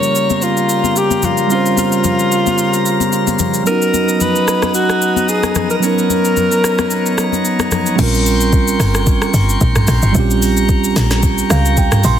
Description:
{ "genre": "amapiano", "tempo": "111 BPM", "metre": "4/4", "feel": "swing 55% on 16ths", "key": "Bb dorian", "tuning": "A4 = 440 Hz", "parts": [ { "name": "breathy alto saxophone", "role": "melody", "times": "0.0-7.7 s", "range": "F4 to Db5", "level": "-17 LUFS", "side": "left 2 dB", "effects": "ping-pong delay" }, { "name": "mellow tine electric piano", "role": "accompaniment", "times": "0.0-12.2 s", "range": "F#3 to C6", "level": "-18 LUFS", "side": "right 5 dB", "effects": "none" }, { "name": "chamber organ, principal chorus", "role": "sustained chords", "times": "0.0-12.2 s", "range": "Db3 to Db6", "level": "-20 LUFS", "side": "left 2 dB", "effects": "sidechain pumping" }, { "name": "smooth R&B drum kit", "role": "drums", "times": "0.0-12.2 s", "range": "crash cymbal, hi-hat, kick drum, rim click, shaker, snare drum, toms", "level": "-18 LUFS", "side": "equal", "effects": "soft clipping on snare" }, { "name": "congas", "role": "percussion", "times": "0.3-7.9 s", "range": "none", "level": "-23 LUFS", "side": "left 9 dB", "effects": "none" }, { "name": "woody log drum bass", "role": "bass", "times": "8.0-12.2 s", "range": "G1 to Db2", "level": "-16 LUFS", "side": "equal", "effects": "none" } ], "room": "light reverb, digital ambience", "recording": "dense, heavily limited modern master", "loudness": "-12 LUFS", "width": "side -9 dB against mid", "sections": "0.0-8.0 A section; 8.0-12.2 B section", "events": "drop 8.0-12.2; tine electric piano fill 11.2-12.2", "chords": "0.0 Bbm69; 3.7 Bmaj7; 8.0 Bbm69", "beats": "0.42 0.96 | 1.50 2.04 2.58 3.12 | 3.67 4.21 4.75 5.29 | 5.83 6.37 6.91 7.45 | 7.99 8.53 9.07 9.61 | 10.15 10.69 11.23 11.77" }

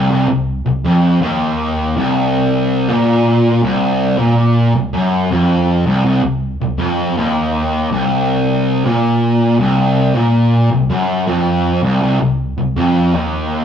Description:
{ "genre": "metal", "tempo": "80 BPM", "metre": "4/4", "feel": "straight", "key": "C minor", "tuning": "A4 = 438 Hz", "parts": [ { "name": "fuzz guitar", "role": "solo", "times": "0.0-13.6 s", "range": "C2 to Bb2", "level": "-12 LUFS", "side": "equal", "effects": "distortion" } ], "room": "moderate large studio reverb, RT60 0.9 s", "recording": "band playing live in one room", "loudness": "-12 LUFS", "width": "side -8 dB against mid", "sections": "0.0-13.6 A section", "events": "none", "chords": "none", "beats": "| 0.10 0.84 1.58 2.33 | 3.07 3.81 4.56 5.31 | 6.05 6.80 7.54 8.29 | 9.04 9.79 10.54 11.28 | 12.03 12.78 13.53" }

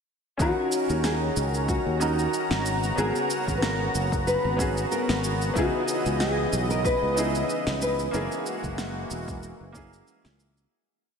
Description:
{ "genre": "sunset chillout", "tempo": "93 BPM", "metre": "4/4", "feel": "swing 55% on 16ths", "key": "unclear", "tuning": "A4 = 440 Hz", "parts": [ { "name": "nylon-string guitar", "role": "melody", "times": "0.4-10.0 s", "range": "D#4 to B4", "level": "-29 LUFS", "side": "left 2 dB", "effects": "ping-pong delay" }, { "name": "clear baby grand piano", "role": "accompaniment", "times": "0.4-10.7 s", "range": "A#3 to A#4", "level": "-32 LUFS", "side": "right 1 dB", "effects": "auto-pan, low-pass filter, tape echo" }, { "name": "lush unison pad", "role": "sustained chords", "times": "0.4-10.7 s", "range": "C#3 to A#5", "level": "-30 LUFS", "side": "equal", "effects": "chorus" }, { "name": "sustaining fretless electric bass", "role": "bass", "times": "0.4-10.6 s", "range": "E1 to D#2", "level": "-29 LUFS", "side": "equal", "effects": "tube saturation, analog chorus" }, { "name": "electronic kick drum", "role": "drums", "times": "0.4-9.9 s", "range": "none", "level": "-31 LUFS", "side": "equal", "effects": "none" }, { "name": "electronic shaker and snare drum", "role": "drums", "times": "0.4-10.7 s", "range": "none", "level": "-34 LUFS", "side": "equal", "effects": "none" } ], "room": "wet lush hall reverb, RT60 2.8 s", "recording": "dreamy mix soaked in reverb", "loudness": "-23 LUFS", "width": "side -6 dB against mid", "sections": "0.4-10.7 groove", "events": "filter sweep on grand piano 0.4-10.7; fade-out 7.3-10.7", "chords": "0.4 D#m7; 2.7 G#m11; 5.6 C#m9; 8.1 F#9", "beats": "| 0.40 1.04 1.69 2.33 | 2.98 3.62 4.27 4.91 | 5.56 6.20 6.85 7.49 | 8.14 8.78 9.43 10.07" }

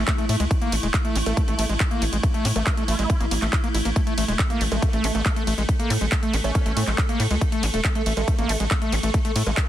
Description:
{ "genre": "psychedelic trance", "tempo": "139 BPM", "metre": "4/4", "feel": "straight", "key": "unclear", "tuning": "A4 = 440 Hz", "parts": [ { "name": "swarming drone", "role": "sustained chords", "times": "0.0-9.7 s", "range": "A3 to A4", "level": "-30 LUFS", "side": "right 1 dB", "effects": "built-in reverb, vintage 12-bit sampler grit, sidechain pumping" }, { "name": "screaming distorted acid line", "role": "riff", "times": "0.0-9.5 s", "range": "G#3 to E4", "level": "-28 LUFS", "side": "moving between left 3 dB and right 3 dB", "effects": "distortion, chorus, auto-pan, cassette tape, sidechain pumping, ping-pong delay" }, { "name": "tight sequencer bass", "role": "bass", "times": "0.0-9.5 s", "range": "E1 to A2", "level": "-24 LUFS", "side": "equal", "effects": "none" }, { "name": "electronic kick drum", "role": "drums", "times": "0.1-9.7 s", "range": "none", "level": "-22 LUFS", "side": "equal", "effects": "none" }, { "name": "techno drum kit", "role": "drums", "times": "0.1-9.7 s", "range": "handclaps, hi-hat, ride cymbal", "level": "-28 LUFS", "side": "right 1 dB", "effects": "none" }, { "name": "vowel-sweep wobble bass", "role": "second line", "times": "1.3-9.6 s", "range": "A3 to E4", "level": "-33 LUFS", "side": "right 2 dB", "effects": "chorus, sidechain pumping, high-pass filter, ping-pong delay" } ], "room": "little or no reverb", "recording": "dense, heavily limited modern master", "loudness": "-20 LUFS", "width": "side -12 dB against mid", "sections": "0.0-9.7 A section", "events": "none", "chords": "0.0 A5", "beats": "0.08 | 0.51 0.94 1.37 1.80 | 2.23 2.67 3.10 3.53 | 3.96 4.39 4.82 5.26 | 5.69 6.12 6.55 6.98 | 7.41 7.85 8.28 8.71 | 9.14 9.57" }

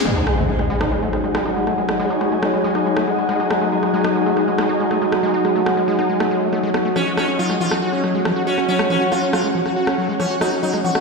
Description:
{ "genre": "psychedelic trance", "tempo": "139 BPM", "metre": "4/4", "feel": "straight", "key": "unclear", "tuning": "A4 = 438 Hz", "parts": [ { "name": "overtone-sweeping drone", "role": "sustained chords", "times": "0.0-11.0 s", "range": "F#3 to F#4", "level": "-21 LUFS", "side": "equal", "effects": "chorus, built-in reverb" }, { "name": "overdriven acid bass", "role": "riff", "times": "0.0-11.0 s", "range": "E#3 to F#4", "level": "-23 LUFS", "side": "moving between left 5 dB and right 2 dB", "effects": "distortion, auto-pan, vintage 12-bit sampler grit, tape echo" }, { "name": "ethereal airy pad", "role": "texture", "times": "0.0-11.0 s", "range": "C#4 to G#5", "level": "-23 LUFS", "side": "equal", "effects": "ensemble chorus, built-in reverb" }, { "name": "electronic rim click", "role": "drums", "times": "0.1-11.0 s", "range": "none", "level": "-26 LUFS", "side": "equal", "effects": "none" }, { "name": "impact", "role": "sound effects", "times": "0.1-1.8 s", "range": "none", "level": "-23 LUFS", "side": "equal", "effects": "none" }, { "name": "sitar", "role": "melody", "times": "7.0-11.0 s", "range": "C#4 to F#4", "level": "-24 LUFS", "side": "left 1 dB", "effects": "phaser, digital delay" } ], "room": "wet lush hall reverb, RT60 1.8 s", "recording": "played on a big sound system in a bare room, stone room reverb", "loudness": "-16 LUFS", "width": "side -3 dB against mid", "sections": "0.1-11.0 A section", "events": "impact 0.1-1.8; filter sweep on acid bass 0.1-11.0", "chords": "0.1 G#5; 7.0 F#5", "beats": "| 0.05 0.48 0.92 1.35 | 1.78 2.21 2.64 3.07 | 3.50 3.94 4.37 4.80 | 5.23 5.66 6.09 6.53 | 6.96 7.39 7.82 8.25 | 8.69 9.12 9.55 9.98 | 10.41 10.84" }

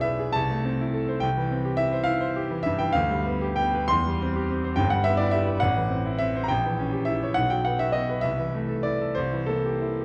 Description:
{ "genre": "classical, romantic character piece for solo piano", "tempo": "55-73 BPM (dotted quarters)", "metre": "6/8", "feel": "rubato", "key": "unclear", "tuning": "A4 = 440 Hz", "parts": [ { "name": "clear concert grand piano", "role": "solo", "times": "0.0-10.0 s", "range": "G1 to C6", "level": "-25 LUFS", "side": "equal", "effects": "none" } ], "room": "wet concert hall reverb, RT60 2.4 s", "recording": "worn, warbling old tape, cassette tape, warbly pitch drift", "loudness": "-25 LUFS", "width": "mono", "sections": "0.0-10.0 A section", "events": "none", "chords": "0.4 Am/C; 1.2 C; 2.9 G7/D; 3.9 C/E; 4.8 Em/G; 5.6 Am; 6.5 A#dim7; 7.4 B5; 8.2 Am/C; 9.2 C7", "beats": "0.35 | 1.24 2.08 | 2.94 3.90 | 4.78 5.62 | 6.49 7.37 | 8.25 9.17" }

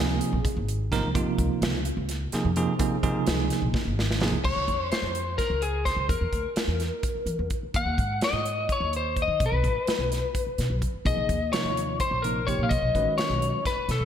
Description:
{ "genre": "electric jazz fusion", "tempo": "254 BPM (eighths)", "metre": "7/8", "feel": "straight", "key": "unclear", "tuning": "A4 = 441 Hz", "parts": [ { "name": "bell-like tine electric piano", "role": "accompaniment", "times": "0.0-4.4, 11.1-13.6 s", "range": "C3 to Cb5", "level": "-28 LUFS", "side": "right 4 dB", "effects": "fast stereo tremolo" }, { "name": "upright bass", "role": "bass", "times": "0.0-14.1 s", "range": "Ab1 to Fb3", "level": "-29 LUFS", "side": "equal", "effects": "none" }, { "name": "modern studio drum kit", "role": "drums", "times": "0.2-14.0 s", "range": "crash cymbal, hi-hat, kick drum, snare drum", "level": "-30 LUFS", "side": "equal", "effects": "gated reverb" }, { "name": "lightly driven lead guitar", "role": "melody", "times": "4.4-14.1 s", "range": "Ab4 to Gb5", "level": "-27 LUFS", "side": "left 3 dB", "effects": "lush chorus" } ], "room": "moderate lush hall reverb, RT60 1.9 s, studio reverb", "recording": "bright 1980s-style digital production", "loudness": "-24 LUFS", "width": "side -9 dB against mid", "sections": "0.0-4.4 A section; 4.4-14.1 B section", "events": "drum fill 3.7-4.4", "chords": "0.0 Db6; 4.4 Dbmaj7; 6.1 N.C.; 7.7 Ebm; 9.4 N.C.; 11.1 Bbm11; 12.7 Cbadd9", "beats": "0.22 0.45 0.69 0.92 | 1.16 1.39 1.63 1.86 2.10 2.33 2.57 | 2.80 3.04 3.27 3.51 3.74 3.98 4.21 | 4.45 4.68 4.92 5.15 5.39 5.62 5.86 | 6.10 6.33 6.57 6.80 7.04 7.28 7.51 | 7.75 7.98 8.22 8.46 8.69 8.93 9.16 | 9.40 9.64 9.87 10.11 10.35 10.58 10.82 | 11.05 11.29 11.53 11.76 12.00 12.23 12.47 | 12.71 12.94 13.18 13.41 13.65 13.89" }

